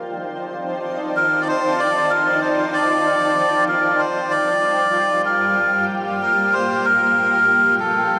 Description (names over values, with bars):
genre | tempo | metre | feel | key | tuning
ambient | 95 BPM | 4/4 | straight | G minor | A4 = 442 Hz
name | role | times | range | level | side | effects
granular cloud pad | sustained chords | 0.0-8.2 s | G3 to A5 | -24 LUFS | equal | built-in reverb
melodica | melody | 1.2-8.2 s | A4 to D5 | -19 LUFS | equal | dub echo
room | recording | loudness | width
wet spring reverb, RT60 1.5 s, small room ambience | echo-heavy mix | -18 LUFS | mono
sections
0.0-8.2 A section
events
none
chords
0.0 F13; 4.0 Gm9